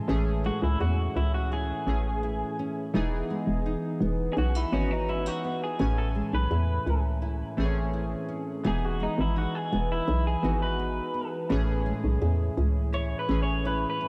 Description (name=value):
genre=indie pop, bedroom pop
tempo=84 BPM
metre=4/4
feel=straight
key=A lydian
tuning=A4 = 441 Hz
part: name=chorused retro synth keys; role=accompaniment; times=0.0-14.1 s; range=E3 to G#5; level=-36 LUFS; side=equal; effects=cassette tape
part: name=nylon-string guitar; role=accompaniment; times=0.0-14.1 s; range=A2 to E4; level=-36 LUFS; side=equal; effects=analog chorus, warbly pitch drift
part: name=hollow knocking FM bass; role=bass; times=0.1-13.9 s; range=E1 to E2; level=-29 LUFS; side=equal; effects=none
part: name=electric guitar through a small old amp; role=melody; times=0.5-14.1 s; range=C#4 to C#5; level=-36 LUFS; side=equal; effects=subtle chorus, tape echo
room=moderate lush hall reverb, RT60 2.5 s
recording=dreamy mix soaked in reverb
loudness=-28 LUFS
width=mono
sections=0.1-14.1 A section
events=clean electric guitar solo 0.1-14.1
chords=0.1 Amaj7; 2.9 Emaj7; 5.8 Amaj7; 8.7 Emaj7; 11.5 Amaj7